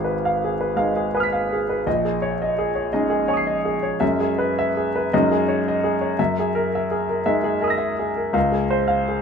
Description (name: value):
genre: classical, impressionist solo piano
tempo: 55 BPM (dotted quarters)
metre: 6/8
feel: rubato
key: unclear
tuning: A4 = 440 Hz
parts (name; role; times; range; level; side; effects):
- clear grand piano; solo; 0.0-9.2 s; G#1 to B#6; -19 LUFS; equal; none
room: light reverb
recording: minimal, uncompressed stereo recording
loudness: -19 LUFS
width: side -6 dB against mid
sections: 0.0-9.2 A section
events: none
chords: 0.0 G#m6; 1.9 A#m11; 4.0 F#9sus4; 5.1 G#7sus4/F#; 6.2 Emaj7#11/F#; 8.3 Dbmaj7